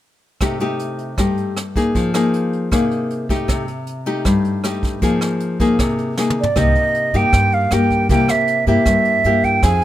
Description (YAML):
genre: bossa nova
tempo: 156 BPM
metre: 4/4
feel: straight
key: C minor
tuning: A4 = 441 Hz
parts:
  - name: nylon-string guitar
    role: accompaniment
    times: 0.4-9.8 s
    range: G2 to Ab4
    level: -18 LUFS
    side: left 2 dB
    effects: none
  - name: jazz brush drum kit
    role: drums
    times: 0.4-9.8 s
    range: hi-hat, kick drum, rim click, snare drum, toms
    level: -23 LUFS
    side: right 1 dB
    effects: none
  - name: concert flute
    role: melody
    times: 6.4-9.8 s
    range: D5 to Ab5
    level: -16 LUFS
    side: right 3 dB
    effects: none
  - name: upright bass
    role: bass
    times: 6.6-9.8 s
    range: C2 to G2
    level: -19 LUFS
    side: right 1 dB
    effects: none
room: little or no reverb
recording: none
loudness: -15 LUFS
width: side -13 dB against mid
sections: 0.4-6.6 A section; 6.6-9.8 B section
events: drum fill 6.2-6.6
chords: 0.4 Cm6; 1.9 Fm11; 3.5 Cm6; 5.0 Fm7; 6.6 Cm7; 8.1 C7